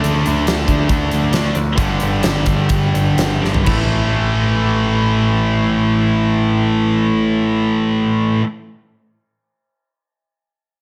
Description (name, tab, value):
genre	hard rock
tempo	118-140 BPM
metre	4/4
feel	straight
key	unclear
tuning	A4 = 440 Hz
part	biting overdriven guitar	riff	0.0-8.4 s	G2 to D4	-22 LUFS	equal	none
part	scooped high-gain guitar	riff	0.0-8.5 s	G2 to D4	-21 LUFS	equal	distortion
part	growling picked electric bass	bass	0.0-8.4 s	G1 to D2	-22 LUFS	equal	overdrive
part	huge arena drum kit	drums	0.0-3.8 s	crash cymbal, hi-hat, kick drum, snare drum, toms	-23 LUFS	equal	none
room	moderate large studio reverb, RT60 1.0 s, studio ambience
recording	none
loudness	-16 LUFS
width	mono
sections	0.0-3.7 A section; 3.7-7.7 B section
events	slowing down 0.0-3.7; drum fill 3.4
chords	0.0 D5; 1.8 G5; 3.7 A5